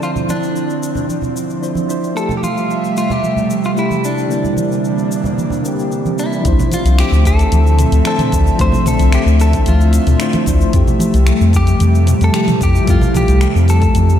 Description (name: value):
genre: sunset chillout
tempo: 112 BPM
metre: 4/4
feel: straight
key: D minor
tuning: A4 = 440 Hz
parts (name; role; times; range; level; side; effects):
- clean electric guitar; melody; 0.0-14.2 s; D4 to C5; -22 LUFS; equal; tape echo
- soft electric-piano-like synth keys; accompaniment; 0.0-14.2 s; D3 to E5; -20 LUFS; equal; chorus, auto-pan, tape echo
- airy breathy pad; sustained chords; 0.0-14.2 s; C3 to E5; -19 LUFS; equal; chorus
- deep house drum kit; drums; 0.0-14.2 s; finger snaps, hi-hat, shaker, toms; -25 LUFS; left 1 dB; none
- congas; percussion; 0.2-14.1 s; none; -24 LUFS; right 2 dB; none
- round analog bass; bass; 6.4-14.2 s; C2 to F2; -12 LUFS; equal; none
- electronic kick drum; drums; 6.4-13.9 s; none; -18 LUFS; equal; none
room: moderate lush hall reverb, RT60 1.9 s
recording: dreamy mix soaked in reverb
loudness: -12 LUFS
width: side -10 dB against mid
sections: 0.0-6.4 A section; 6.4-14.2 B section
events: filter sweep on synth keys 0.0-6.4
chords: 0.0 Dm9; 2.2 Fmaj9; 4.3 C9; 6.4 Dm9; 10.7 Fmaj9